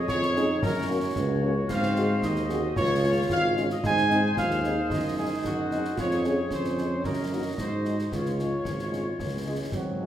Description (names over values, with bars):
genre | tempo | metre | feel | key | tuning
military-style march for wind band | 112 BPM | 2/4 | straight | Db major | A4 = 440 Hz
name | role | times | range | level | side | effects
mellow trumpet section | melody | 0.0-10.1 s | Gb4 to Ab5 | -30 LUFS | equal | none
warm euphonium | second line | 0.0-10.1 s | C4 to Gb4 | -31 LUFS | right 2 dB | none
warm woodwind section | second line | 0.0-10.0 s | F4 to Eb5 | -35 LUFS | left 1 dB | none
warm tuba | bass | 0.1-10.1 s | Ab1 to Ab2 | -29 LUFS | right 1 dB | none
concert snare drum, concert bass drum and clash cymbals | drums | 0.1-9.9 s | none | -35 LUFS | left 1 dB | none
mellow French horn section | accompaniment | 0.4-10.1 s | Ab3 to Ab4 | -34 LUFS | left 3 dB | none
warm trombone section | sustained chords | 9.5-10.1 s | Gb3 to Ab3 | -34 LUFS | right 2 dB | none
room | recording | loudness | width
wet recital hall reverb, RT60 1.5 s | recorded in a church or concert hall | -24 LUFS | side -11 dB against mid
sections
0.0-10.1 A section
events
none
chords
0.0 Db/F; 0.6 Gb; 1.7 Ab7; 2.8 Db; 3.8 Ab; 4.9 Ab7/Gb; 6.0 Db/F; 7.0 Ebm/Gb; 7.6 Ab7; 8.1 Db